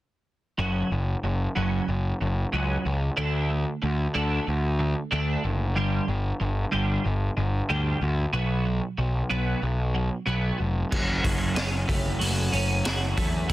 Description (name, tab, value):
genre	quiet-loud alternative rock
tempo	93 BPM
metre	4/4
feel	straight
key	F# phrygian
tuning	A4 = 440 Hz
part	twelve-string electric guitar	arpeggios	0.6-13.5 s	F#2 to F#4	-29 LUFS	right 2 dB	ensemble chorus
part	fuzz picked electric bass	bass	0.6-13.5 s	E#1 to E2	-25 LUFS	equal	overdrive
part	raw garage drum kit	drums	10.9-13.5 s	crash cymbal, hi-hat, kick drum, snare drum	-27 LUFS	equal	none
room	small room ambience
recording	dense, heavily limited modern master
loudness	-24 LUFS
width	side -16 dB against mid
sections	0.6-10.9 A section; 10.9-13.5 B section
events	none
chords	0.6 F#5; 3.2 D; 5.8 G5; 8.3 B5; 10.9 F#m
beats	| 0.59 1.24 1.89 2.54 | 3.18 3.83 4.48 5.12 | 5.77 6.41 7.06 7.71 | 8.35 8.99 9.64 10.28 | 10.93 11.57 12.21 12.86 | 13.50